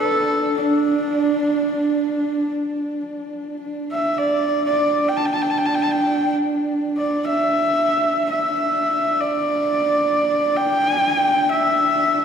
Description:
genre	mongolian traditional, Mongolian folk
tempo	free time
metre	none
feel	none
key	unclear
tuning	A4 = 441 Hz
part	rich horsehead fiddle	melody	0.0-12.2 s	D4 to A5	-19 LUFS	equal	none
part	dark horsehead fiddle	drone	0.0-12.2 s	D4	-23 LUFS	right 2 dB	none
room	wet concert hall reverb, RT60 2.1 s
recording	recorded in a church or concert hall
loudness	-17 LUFS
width	side -7 dB against mid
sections	0.0-3.6 A section; 3.6-12.2 A section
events	none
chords	none

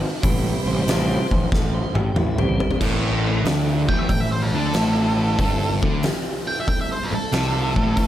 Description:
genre	blues rock power trio and southern rock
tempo	93 BPM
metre	4/4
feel	swing 68% on 8ths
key	A minor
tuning	A4 = 440 Hz
part	tonewheel organ	sustained chords	0.2-8.1 s	C3 to C5	-28 LUFS	right 2 dB	slow rotary speaker
part	fuzz picked electric bass	bass	0.2-8.1 s	G1 to D2	-24 LUFS	equal	overdrive
part	oversized low-tuned drum kit	drums	0.2-8.1 s	crash cymbal, hi-hat, kick drum, snare drum, toms	-23 LUFS	equal	none
part	thick fuzz guitar	riff	2.8-8.1 s	G2 to D3	-23 LUFS	equal	distortion
part	octave-fuzz lead guitar	melody	3.9-8.1 s	A4 to G5	-26 LUFS	right 2 dB	distortion
room	light reverb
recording	none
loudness	-18 LUFS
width	side -12 dB against mid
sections	0.0-2.8 A section; 2.8-8.1 B section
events	tonewheel organ solo 0.0-2.8; drum fill 1.5-2.8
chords	0.2 Am7; 2.8 Am

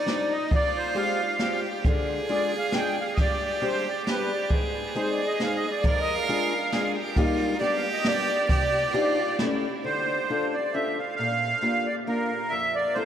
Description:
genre	musette waltz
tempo	135 BPM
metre	3/4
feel	swing 54% on 8ths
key	D minor from 9.8 s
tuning	A4 = 440 Hz
part	accordion	melody	0.0-13.1 s	Bb4 to G5	-27 LUFS	right 1 dB	light tremolo tuning
part	bright violin	second line	0.0-9.8 s	Eb4 to Bb4	-31 LUFS	right 3 dB	none
part	fingerpicked acoustic archtop guitar	accompaniment	0.1-13.1 s	F2 to A4	-30 LUFS	left 3 dB	none
part	jazz brush drum kit	drums	0.1-9.5 s	hi-hat, kick drum, snare drum	-28 LUFS	equal	none
room	wet huge ambient reverb, RT60 8.2 s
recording	in a vast, echoing space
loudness	-23 LUFS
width	side -9 dB against mid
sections	0.0-9.8 A section; 9.8-13.1 B section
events	none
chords	0.0 Cmadd9; 0.5 Fmadd9; 1.8 Ddim; 3.2 Gsus4; 4.1 G; 4.5 Ab; 5.8 Ddim/F; 7.2 Eb; 7.6 G; 8.5 Cmadd9; 9.4 A7; 9.8 Dm7; 11.2 Bb6; 12.5 Fmaj7

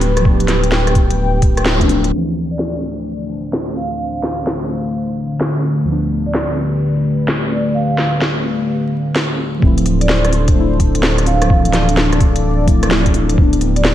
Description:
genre	future garage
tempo	128 BPM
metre	4/4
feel	swing 65% on 16ths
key	D dorian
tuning	A4 = 440 Hz
part	muted felt-like synth keys	accompaniment	0.0-13.9 s	D2 to E4	-21 LUFS	left 1 dB	chorus, phaser, sidechain pumping, analog delay
part	dark analog pad	sustained chords	0.0-13.9 s	D3 to G5	-20 LUFS	left 1 dB	chorus, sidechain pumping
part	warm sub bass	bass	0.0-2.1, 9.6-13.9 s	D1	-17 LUFS	equal	sidechain pumping
part	organic electronic drum kit	drums	0.0-13.9 s	hi-hat, rim click, snare drum	-20 LUFS	equal	none
part	electronic kick drum	drums	0.3-1.9, 9.6-13.5 s	none	-14 LUFS	equal	overdrive
part	vibraphone with soft mallets	melody	2.5-13.9 s	D5 to F5	-24 LUFS	right 2 dB	vintage 12-bit sampler grit, ping-pong delay
room	light reverb, digital ambience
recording	vinyl crackle, low-pass filter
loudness	-13 LUFS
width	side -12 dB against mid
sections	0.0-2.1 A section; 2.1-9.6 B section; 9.6-13.9 C section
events	band accent 1.7; filter sweep 2.1-9.6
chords	0.0 G7/D; 2.1 Dm7; 5.9 G7/D; 9.6 Dm7; 13.4 G7/D

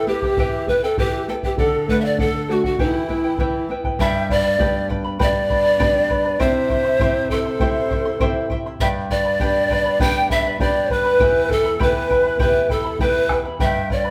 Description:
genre	andean folk, Andean ensemble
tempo	100 BPM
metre	4/4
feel	straight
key	E minor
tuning	A4 = 440 Hz
part	breathy reedy pan flute	melody	0.0-14.1 s	E4 to G5	-23 LUFS	equal	none
part	breathy large quena	second line	0.0-14.1 s	E4 to A5	-27 LUFS	equal	none
part	charango	accompaniment	0.0-14.1 s	E4 to C6	-28 LUFS	equal	none
part	flamenco guitar	accompaniment	0.0-14.1 s	E2 to G4	-29 LUFS	equal	none
part	bombo	percussion	0.2-14.0 s	none	-27 LUFS	equal	none
room	wet large studio reverb, RT60 1.2 s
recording	band playing live in one room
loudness	-19 LUFS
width	mono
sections	0.0-4.0 A section; 4.0-14.1 B section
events	none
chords	0.0 Em; 1.6 D; 2.8 Em; 4.0 G; 6.4 C; 8.8 G; 11.2 Em

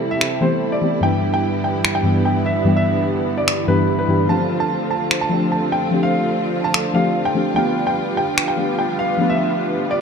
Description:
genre	future bass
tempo	147 BPM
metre	4/4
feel	half-time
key	unclear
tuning	A4 = 440 Hz
part	soft round pluck	accompaniment	0.0-10.0 s	G2 to B4	-21 LUFS	left 2 dB	chorus
part	clear studio string section	sustained chords	0.0-10.0 s	G2 to F4	-27 LUFS	right 2 dB	low-pass filter
part	soft supersaw	riff	0.0-10.0 s	G3 to F5	-22 LUFS	right 2 dB	low-pass filter
part	warm grand piano	melody	0.1-10.0 s	B4 to A5	-22 LUFS	right 1 dB	ping-pong delay
part	electronic finger snaps	drums	0.2-8.5 s	none	-20 LUFS	equal	none
room	moderate digital room reverb, RT60 1.3 s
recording	dark, warm production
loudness	-16 LUFS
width	side -6 dB against mid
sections	0.0-10.0 A section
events	filter sweep on string section 0.0-10.0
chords	0.0 Am7; 1.0 Em7/G; 4.3 F6; 7.6 G7

